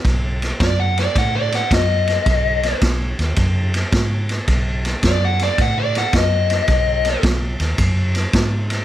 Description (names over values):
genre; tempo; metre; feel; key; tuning
electric blues shuffle; 108 BPM; 4/4; swing 67% on 8ths; B mixolydian; A4 = 440 Hz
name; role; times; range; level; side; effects
vintage muted fingered electric bass; bass; 0.0-8.8 s; B1 to A2; -20 LUFS; equal; none
vintage drum kit; drums; 0.0-8.8 s; kick drum, ride cymbal, snare drum; -19 LUFS; equal; none
biting lead guitar; melody; 0.6-7.2 s; D5 to F#5; -19 LUFS; left 2 dB; overdrive
room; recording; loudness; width
light reverb; none; -16 LUFS; side -13 dB against mid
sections
0.1-8.8 A section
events
lead electric guitar solo 0.1-8.8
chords
0.1 B7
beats
| 0.05 0.60 1.16 1.71 | 2.26 2.81 3.37 3.92 | 4.47 5.03 5.58 6.13 | 6.69 7.24 7.79 8.34